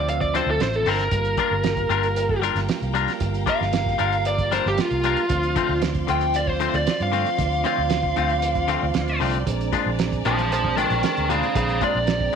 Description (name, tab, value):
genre	straight-eighth soul blues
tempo	115 BPM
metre	4/4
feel	straight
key	D minor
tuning	A4 = 440 Hz
part	biting lead guitar	melody	0.0-12.4 s	F4 to A5	-23 LUFS	equal	overdrive, slapback echo
part	tonewheel organ	accompaniment	0.0-12.4 s	F3 to F5	-30 LUFS	right 13 dB	slow rotary speaker, overdrive
part	vintage muted fingered electric bass	bass	0.0-12.3 s	G1 to G2	-26 LUFS	equal	none
part	cloth-damped thuddy drum kit	drums	0.1-12.4 s	hi-hat, kick drum, snare drum	-28 LUFS	right 5 dB	none
part	clean electric guitar	stabs	0.3-12.4 s	Bb2 to Bb4	-26 LUFS	left 12 dB	none
part	clear studio string section	sustained chords	1.1-12.4 s	D5 to C6	-35 LUFS	left 3 dB	none
room	light reverb, studio reverb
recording	1960s-style stereo with parts hard left and right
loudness	-20 LUFS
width	side -7 dB against mid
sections	0.0-12.4 A section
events	lead electric guitar solo 0.0-12.4; tonewheel organ fill 8.7-9.5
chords	0.0 Dm7; 1.1 Gm7; 5.3 Dm7; 9.5 Bb7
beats	0.08 0.60 | 1.13 1.65 2.17 2.69 | 3.22 3.74 4.26 4.78 | 5.30 5.83 6.35 6.87 | 7.39 7.91 8.43 8.95 | 9.47 9.99 10.52 11.04 | 11.56 12.08